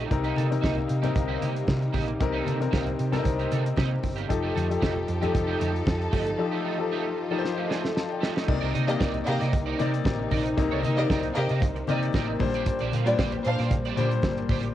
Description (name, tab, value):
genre	disco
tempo	115 BPM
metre	4/4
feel	straight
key	C dorian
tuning	A4 = 441 Hz
part	clear concert grand piano	accompaniment	0.0-14.7 s	Bb2 to A5	-29 LUFS	left 6 dB	cassette tape
part	electric guitar at the edge of break-up	accompaniment	0.0-14.7 s	A3 to F5	-34 LUFS	right 10 dB	ensemble chorus, cassette tape
part	warm studio string section	sustained chords	0.0-14.7 s	C3 to A4	-33 LUFS	equal	cassette tape
part	hollow-body short-scale fingered electric bass	bass	0.0-14.7 s	F1 to C3	-29 LUFS	right 1 dB	none
part	damped 70s drum kit	drums	0.1-14.7 s	crash cymbal, hi-hat, kick drum, snare drum	-28 LUFS	right 1 dB	cassette tape
part	congas	percussion	0.1-14.6 s	none	-37 LUFS	left 5 dB	none
part	dark studio violin section	second line	8.9-13.7 s	G3 to F5	-29 LUFS	equal	cassette tape
room	light reverb, small room reverb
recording	home recording on cassette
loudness	-23 LUFS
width	side -12 dB against mid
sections	0.0-8.5 A section; 8.5-14.7 B section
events	break 6.4-8.5; drum fill 7.4-8.5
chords	0.1 Cm7; 4.3 F9; 8.5 Cm9; 12.4 Bb69